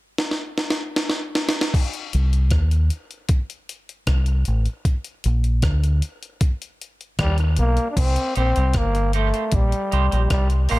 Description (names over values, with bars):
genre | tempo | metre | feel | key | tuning
dub reggae | 77 BPM | 4/4 | straight | unclear | A4 = 439 Hz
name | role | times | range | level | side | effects
breakbeat sampler-style drum kit | drums | 0.2-10.8 s | crash cymbal, hi-hat, kick drum, rim click, snare drum | -23 LUFS | equal | none
deep dub fingered electric bass | bass | 2.1-10.8 s | G1 to Eb2 | -18 LUFS | equal | none
growling trombone | melody | 7.2-10.8 s | G3 to D4 | -24 LUFS | equal | dub echo
clean electric guitar | accompaniment | 8.4-10.8 s | Eb4 to C5 | -29 LUFS | right 10 dB | high-pass filter, low-pass filter, dub echo
room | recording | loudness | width
digital ambience | none | -19 LUFS | side -19 dB against mid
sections
0.0-1.7 A section; 1.7-8.0 B section; 8.0-10.8 C section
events
drum fill 0.2-1.7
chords
0.0 N.C.; 1.7 Cm; 4.8 Bb; 6.4 B; 8.0 Cm